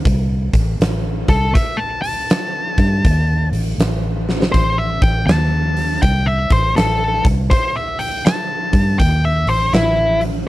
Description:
blues rock power trio and southern rock; 80 BPM; 4/4; swing 64% on 8ths; A4 = 440 Hz
vintage muted fingered electric bass; bass; 0.1-10.4 s; A1 to G2; -18 LUFS; equal
huge arena drum kit; drums; 0.1-10.3 s; hi-hat, kick drum, snare drum; -18 LUFS; equal
octave-fuzz lead guitar; melody; 1.3-10.2 s; E4 to A5; -19 LUFS; left 1 dB; distortion, slapback echo
little or no reverb; -14 LUFS; side -16 dB against mid
0.0-10.5 A section
lead electric guitar solo 0.0-10.5; drum fill 4.2-4.5

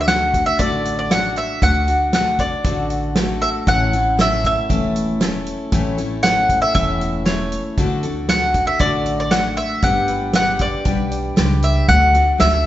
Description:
honky-tonk and classic country; 117 BPM; 4/4; straight; D major; A4 = 441 Hz
mandolin; melody; 0.0-12.7 s; C#5 to F#5; -18 LUFS; equal
picked steel-string acoustic guitar; accompaniment; 0.0-12.7 s; A2 to B4; -23 LUFS; left 2 dB
upright bass; bass; 0.0-12.7 s; E1 to D2; -23 LUFS; equal
natural country drum kit; drums; 0.1-12.5 s; hi-hat, kick drum, snare drum; -21 LUFS; right 1 dB
moderate concert hall reverb, RT60 1.8 s; recorded in a church or concert hall, nothing above 7.8 kHz; -15 LUFS; side -13 dB against mid
0.0-12.7 A section
0.0 D; 3.7 A; 7.8 D; 9.8 G; 11.9 D

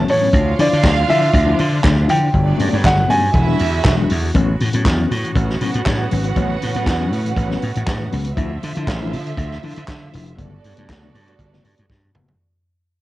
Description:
disco; 119 BPM; 4/4; straight; A major; A4 = 440 Hz
warm grand piano; melody; 0.0-3.8 s; C#5 to A5; -19 LUFS; equal; cassette tape
warm studio string section; second line; 0.0-12.4 s; A3 to F#5; -26 LUFS; right 8 dB; cassette tape
mellow tine electric piano; accompaniment; 0.0-12.3 s; G2 to E4; -24 LUFS; left 5 dB; medium stereo tremolo, cassette tape
clear studio string section; sustained chords; 0.0-12.4 s; C#3 to E5; -29 LUFS; right 1 dB; cassette tape
slap bass; bass; 0.0-12.3 s; E1 to D3; -19 LUFS; equal
vintage drum kit; drums; 0.1-12.4 s; handclaps, hi-hat, kick drum, snare drum, toms; -21 LUFS; equal; cassette tape
light reverb; home recording on cassette; -15 LUFS; side -16 dB against mid
0.0-4.4 A section; 4.4-12.4 B section
fade-out 4.4-12.4; drum fill 11.9-12.4
0.3 Dmadd9; 2.3 Gmaj9#11; 3.3 E9; 4.4 A69; 8.4 Dmadd9; 10.4 Gmaj9#11

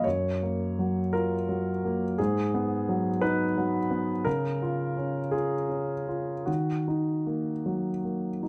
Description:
neoclassical minimalist piano; 50-59 BPM (dotted quarters); 6/8; rubato; F# major; A4 = 440 Hz
warm concert grand piano; solo; 0.0-8.5 s; F#2 to C#5; -28 LUFS; equal
moderate small room reverb, RT60 0.5 s; -28 LUFS; mono
0.0-8.5 A section
0.0 F#maj7; 2.2 G#m7; 4.3 C#; 6.5 D#m

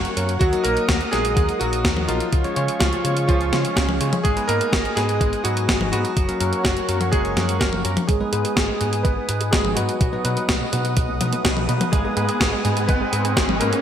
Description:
italo disco; 125 BPM; 4/4; straight; A4 = 439 Hz
warm analog pad; sustained chords; 0.0-13.8 s; Ab4 to Eb6; -28 LUFS; right 1 dB; chorus
bell-like tine electric piano; stabs; 0.0-13.8 s; Gb3 to Db5; -28 LUFS; left 3 dB; medium stereo tremolo
fingered electric bass; bass; 0.0-13.7 s; Gb1 to Db3; -26 LUFS; equal; tube saturation
clean 12-bit digital drum machine; drums; 0.0-13.8 s; hi-hat, snare drum, toms; -24 LUFS; left 1 dB; overdrive, gated reverb
clear electric grand piano; melody; 0.4-13.8 s; Db3 to Cb5; -24 LUFS; right 1 dB; lush chorus, low-pass filter, ping-pong delay
electronic kick drum; drums; 0.4-13.5 s; -22 LUFS; equal; overdrive
wide unison pluck; arpeggios; 8.1-13.8 s; Ab2 to Ab4; -31 LUFS; right 2 dB
riser; sound effects; 10.1-13.8 s; -30 LUFS; equal
moderate plate reverb, RT60 2.8 s; bright 1980s-style digital production; -18 LUFS; side -9 dB against mid
0.0-8.1 A section; 8.1-13.8 B section
filter sweep on electric grand piano 8.1-13.8; riser 10.1-13.8
0.4 Ebm; 2.3 Db; 4.2 Abm; 6.2 Gb; 8.1 Abm; 10.0 B; 11.9 Abm

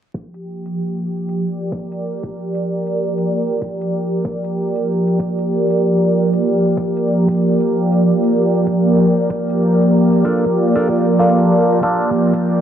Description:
glitch hop; 95 BPM; 4/4; swing 62% on 16ths; G minor; A4 = 440 Hz
warbly tape-like pad; sustained chords; 0.5-12.6 s; F3 to G4; -16 LUFS; equal; chorus, built-in reverb, phaser, sidechain pumping
electronic kick drum; drums; 0.1-12.4 s; -29 LUFS; equal; high-pass filter on kick, high-pass filter on room
airy breathy pad; texture; 0.4-12.6 s; G4 to D5; -20 LUFS; right 2 dB; chorus, phaser, sidechain pumping
electronic hi-hat; drums; 0.3-12.4 s; -56 LUFS; equal
overdriven clav; stabs; 10.2-12.1 s; Bb3 to A4; -19 LUFS; equal; phaser, sidechain pumping, dub echo
moderate lush hall reverb, RT60 2.0 s; vinyl crackle, low-pass filter; -14 LUFS; side -9 dB against mid
0.1-12.6 A section
filter sweep 0.1-12.6
0.1 Gm7

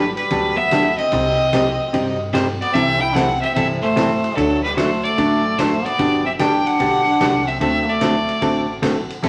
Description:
country, western swing; 148 BPM; 4/4; swing 67% on 8ths; A4 = 442 Hz
bright fiddle; melody; 0.0-9.3 s; A4 to G5; -22 LUFS; equal
mellow duduk; second line; 0.0-9.3 s; F#3 to E4; -26 LUFS; equal
hollow-body jazz guitar; accompaniment; 0.0-9.3 s; C3 to A4; -22 LUFS; equal
upright bass; bass; 0.0-9.3 s; G1 to G2; -32 LUFS; equal
swinging big-band drum kit; drums; 0.2-9.3 s; hi-hat, kick drum, ride cymbal, snare drum; -31 LUFS; equal
wet club reverb, RT60 0.8 s; tape saturation, vinyl crackle; -18 LUFS; mono
0.0-9.3 A section
0.0 Gmaj7; 1.1 Cm; 2.7 C6; 4.4 D; 6.0 Gmaj7; 7.6 D7

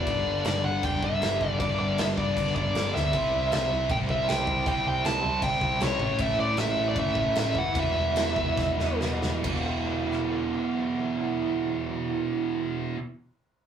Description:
hard rock; 133-157 BPM; 4/4; straight; E minor; A4 = 438 Hz
dark smooth lead guitar; melody; 0.0-9.0 s; C#5 to A5; -28 LUFS; equal; overdrive, digital delay
biting overdriven guitar; riff; 0.0-13.0 s; G2 to G4; -33 LUFS; right 1 dB; tremolo
cranked stack guitar; riff; 0.0-13.0 s; E2 to C4; -31 LUFS; right 4 dB; overdrive
scooped high-gain guitar; riff; 0.0-13.0 s; E2 to C4; -38 LUFS; left 4 dB; distortion
hollow-body short-scale picked electric bass; bass; 0.0-12.7 s; E1 to D2; -32 LUFS; equal
big rock drum kit; drums; 0.1-10.2 s; crash cymbal, kick drum, rim click, snare drum; -32 LUFS; equal
moderate small room reverb, RT60 0.5 s; rough rehearsal-room recording, small room ambience; -24 LUFS; side -8 dB against mid
0.0-9.5 A section; 9.5-13.1 B section
drum fill 2.9, 8.6-9.5; slowing down 6.2-9.5
0.0 Em; 3.1 C; 6.0 A; 7.8 Em

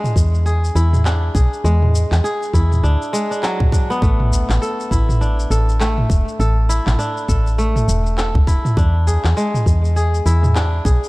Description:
organic downtempo; 101 BPM; 4/4; swing 59% on 16ths; A4 = 440 Hz
kora; arpeggios; 0.0-11.1 s; F#3 to A4; -22 LUFS; equal; tape echo
organic electronic drum kit; drums; 0.0-11.1 s; handclaps, shaker, toms; -23 LUFS; equal; small room ambience
woody FM bass; bass; 0.2-11.0 s; E1 to E2; -16 LUFS; equal; sidechain pumping
electronic kick drum; drums; 0.2-11.0 s; -16 LUFS; equal; small room ambience
udu; percussion; 3.6-4.5, 8.3-9.2 s; -21 LUFS; equal
little or no reverb; dark, warm production; -14 LUFS; side -21 dB against mid
0.0-11.1 A section
0.0 E7; 4.0 A5; 8.8 E7

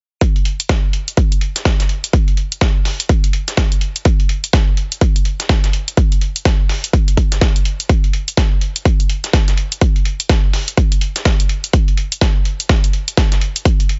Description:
house; 125 BPM; 4/4; swing 60% on 16ths
dusty soul sampler-style drum kit; drums; 0.2-14.0 s; hi-hat, snare drum; -26 LUFS; equal; high-pass filter on hats, high-pass filter on snare
electronic kick drum; drums; 0.2-13.8 s; -16 LUFS; equal
electronic hi-hat; drums; 0.6-13.9 s; -23 LUFS; equal
digital ambience; nothing above 7.7 kHz; -16 LUFS; mono
0.2-14.0 A section

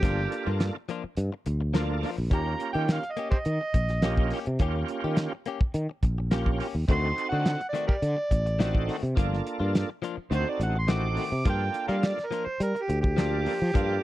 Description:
straight-eighth soul blues; 105 BPM; 4/4; straight; G minor; A4 = 440 Hz
overdriven harmonica; melody; 0.0-14.0 s; G4 to D6; -30 LUFS; right 2 dB
bright tonewheel organ; accompaniment; 0.0-14.0 s; Bb3 to A4; -33 LUFS; right 4 dB; slow rotary speaker, overdrive, chorus vibrato
direct-recorded clean electric guitar; stabs; 0.0-13.9 s; Eb3 to G4; -35 LUFS; left 8 dB
sustaining fretless electric bass; bass; 0.0-14.0 s; G1 to G3; -28 LUFS; equal
cloth-damped thuddy drum kit; drums; 0.0-13.9 s; hi-hat, kick drum, snare drum; -26 LUFS; equal
small room reverb; dry, close 1970s-style studio recording; -25 LUFS; side -15 dB against mid
0.0-11.5 A section; 11.5-14.0 B section
harmonica solo 11.5-14.0
0.0 Gm7; 2.3 Eb7; 6.9 D7b9; 9.2 Gm7; 10.3 D7b9; 11.5 Gm7

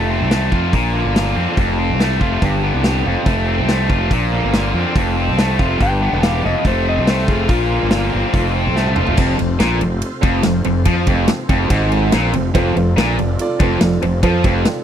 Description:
classic rock; 142 BPM; 4/4; straight; F major; A4 = 440 Hz
tight distorted guitar; riff; 0.0-14.6 s; F2 to F4; -21 LUFS; left 14 dB; distortion
tight distorted guitar; riff; 0.0-14.6 s; F2 to G4; -21 LUFS; right 13 dB; distortion
fuzz fingered electric bass; bass; 0.0-14.6 s; E1 to F2; -19 LUFS; equal; overdrive
big rock drum kit; drums; 0.3-14.8 s; crash cymbal, hi-hat, kick drum, ride cymbal, snare drum, toms; -19 LUFS; equal
tonewheel organ; sustained chords; 2.4-14.8 s; B3 to C5; -28 LUFS; equal; overdrive, chorus vibrato, slow rotary speaker
clean lap steel guitar; second line; 5.8-8.7 s; F4 to G5; -23 LUFS; left 3 dB
dark grand piano; accompaniment; 12.5-14.8 s; F4 to D5; -22 LUFS; right 3 dB
small room ambience; dry, close 1970s-style studio recording; -14 LUFS; side -9 dB against mid
0.0-9.2 A section; 9.2-14.8 B section
drum fill 8.8-9.2
0.0 F; 0.7 Bbadd9; 1.6 F; 2.4 G; 3.1 F; 4.1 Bbadd9; 5.0 F; 5.8 G; 6.4 F; 7.5 Bbadd9; 8.3 F

